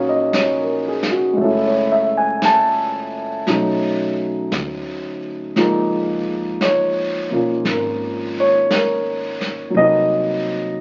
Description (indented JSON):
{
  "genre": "jazz ballad",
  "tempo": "57 BPM",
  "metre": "4/4",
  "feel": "swing 69% on 8ths",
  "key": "unclear",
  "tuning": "A4 = 440 Hz",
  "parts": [
    { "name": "dark grand piano", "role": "accompaniment", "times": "0.0-10.8 s", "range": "F3 to A5", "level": "-19 LUFS", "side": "equal", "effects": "none" },
    { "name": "upright bass", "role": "bass", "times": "0.0-10.8 s", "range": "Gb1 to D2", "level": "-36 LUFS", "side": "equal", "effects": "none" },
    { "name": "vintage brush drum kit", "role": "drums", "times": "0.3-10.8 s", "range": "brushed snare drum, hi-hat, snare drum", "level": "-29 LUFS", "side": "equal", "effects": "none" }
  ],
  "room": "moderate large studio reverb, RT60 0.8 s",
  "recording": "very old 78 rpm record, vinyl crackle, nothing above 7.5 kHz",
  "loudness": "-19 LUFS",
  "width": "mono",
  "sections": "0.0-10.8 A section",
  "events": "none",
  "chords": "0.0 Ebm9; 1.4 Gbm7; 3.5 B9; 5.6 Db6; 9.7 Cm7b5",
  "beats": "0.34 | 1.39 2.43 3.47 4.52 | 5.56 6.60 7.65 8.70 | 9.75 10.80"
}